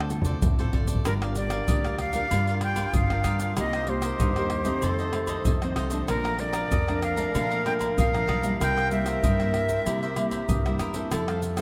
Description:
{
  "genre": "samba and choro",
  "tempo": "95 BPM",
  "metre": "4/4",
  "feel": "straight",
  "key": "unclear",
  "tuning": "A4 = 440 Hz",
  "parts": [
    { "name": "cavaquinho", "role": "accompaniment", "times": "0.0-11.6 s", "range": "Eb4 to Bb5", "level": "-40 LUFS", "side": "equal", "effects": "none" },
    { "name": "nylon-string guitar", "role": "accompaniment", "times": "0.0-11.6 s", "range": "F2 to Bb4", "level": "-34 LUFS", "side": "equal", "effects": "none" },
    { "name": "upright bass", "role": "bass", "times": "0.0-11.6 s", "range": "G1 to C3", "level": "-33 LUFS", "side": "equal", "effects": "none" },
    { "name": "tamborim, tube shaker, pandeiro, surdo and agogo bells", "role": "percussion", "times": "0.0-11.6 s", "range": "none", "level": "-31 LUFS", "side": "equal", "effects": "none" },
    { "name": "breathy bright jazz flute", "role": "melody", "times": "1.1-10.8 s", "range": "Bb4 to G5", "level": "-32 LUFS", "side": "equal", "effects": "none" },
    { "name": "warm clarinet", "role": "second line", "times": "1.1-11.6 s", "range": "F4 to Bb4", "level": "-35 LUFS", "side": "equal", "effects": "none" }
  ],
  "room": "wet cathedral reverb, RT60 5.2 s",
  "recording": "in a vast, echoing space",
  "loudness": "-26 LUFS",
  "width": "mono",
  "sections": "0.0-1.1 A section; 1.1-11.6 B section",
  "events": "drum fill 0.0-1.1",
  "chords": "0.0 Dm7; 1.1 Gm7; 3.6 Cm7; 4.8 F7; 6.1 Bbmaj7; 8.6 C7",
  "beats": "0.42 | 1.05 1.68 2.31 2.94 | 3.57 4.20 4.83 5.46 | 6.09 6.72 7.35 7.98 | 8.61 9.24 9.87 10.50 | 11.13"
}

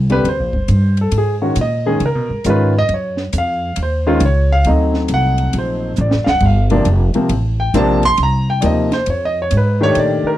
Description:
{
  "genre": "jazz piano trio",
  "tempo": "136 BPM",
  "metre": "4/4",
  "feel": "swing 66% on 8ths",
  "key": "Bb major",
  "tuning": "A4 = 440 Hz",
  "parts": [
    { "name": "upright bass", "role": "bass", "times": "0.0-10.3 s", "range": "D1 to Db3", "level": "-16 LUFS", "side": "equal", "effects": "none" },
    { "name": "warm grand piano", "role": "melody", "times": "0.1-10.4 s", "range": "C3 to C6", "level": "-16 LUFS", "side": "equal", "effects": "none" },
    { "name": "compact cocktail drum kit", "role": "drums", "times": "0.1-10.1 s", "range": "crash cymbal, hi-hat, kick drum, ride cymbal, snare drum", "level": "-26 LUFS", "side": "equal", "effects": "none" }
  ],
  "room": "small room ambience",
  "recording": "dry, close 1970s-style studio recording",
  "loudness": "-13 LUFS",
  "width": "side -13 dB against mid",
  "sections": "0.0-10.4 A section",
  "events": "grand piano solo 0.0-10.4; drum fill 6.0-6.4",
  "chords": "0.0 Bb69; 1.1 Absus2; 2.0 Db13; 2.9 Gb5; 4.7 D7b9; 6.4 Gm9; 8.2 Cm7; 9.1 Fm7b13",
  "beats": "0.26 0.70 | 1.14 1.58 2.02 2.46 | 2.90 3.34 3.78 4.22 | 4.67 5.11 5.55 5.99 | 6.43 6.87 7.31 7.75 | 8.19 8.63 9.07 9.51 | 9.95"
}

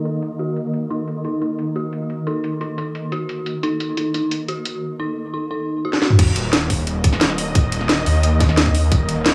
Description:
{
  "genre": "dark technical drum and bass",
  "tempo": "176 BPM",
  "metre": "4/4",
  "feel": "straight",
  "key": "unclear",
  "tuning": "A4 = 440 Hz",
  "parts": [
    { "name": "swarming drone", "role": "sustained chords", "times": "0.0-9.3 s", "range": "Eb3 to Eb5", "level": "-29 LUFS", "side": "equal", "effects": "built-in reverb, sidechain pumping" },
    { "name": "dark detuned synth bell", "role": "arpeggios", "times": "0.1-5.9 s", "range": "Eb4 to Gb4", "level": "-27 LUFS", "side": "equal", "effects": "chorus, phaser, sidechain pumping, dub echo" },
    { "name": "drum and bass drum kit", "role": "drums", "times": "0.1-9.3 s", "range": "crash cymbal, hi-hat, snare drum, toms", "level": "-21 LUFS", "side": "equal", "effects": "low-pass filter on hats, low-pass filter on snare, low-pass filter on toms, low-pass filter on cymbals, low-pass filter on room" },
    { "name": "detuned saw bass", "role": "bass", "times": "6.2-9.3 s", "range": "Eb1 to Eb2", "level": "-22 LUFS", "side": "equal", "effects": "chorus, overdrive, sidechain pumping" },
    { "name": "electronic kick drum", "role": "drums", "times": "6.2-9.0 s", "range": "none", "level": "-19 LUFS", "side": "equal", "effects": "none" }
  ],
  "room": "light reverb",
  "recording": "low-pass filter, studio ambience",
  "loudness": "-20 LUFS",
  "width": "mono",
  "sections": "0.0-6.2 A section; 6.2-9.3 B section",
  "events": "filter sweep on synth drone 0.0-6.2; filter sweep on synth bell 0.0-6.2; filter sweep 0.0-6.2; drum fill 5.9; drop 6.2-9.3",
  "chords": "0.0 Eb5",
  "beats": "0.05 0.39 | 0.73 1.07 1.42 1.76 | 2.10 2.44 2.78 3.12 | 3.46 3.80 4.14 4.48 | 4.83 5.17 5.51 5.85 | 6.19 6.53 6.87 7.21 | 7.55 7.89 8.23 8.57 | 8.92 9.26"
}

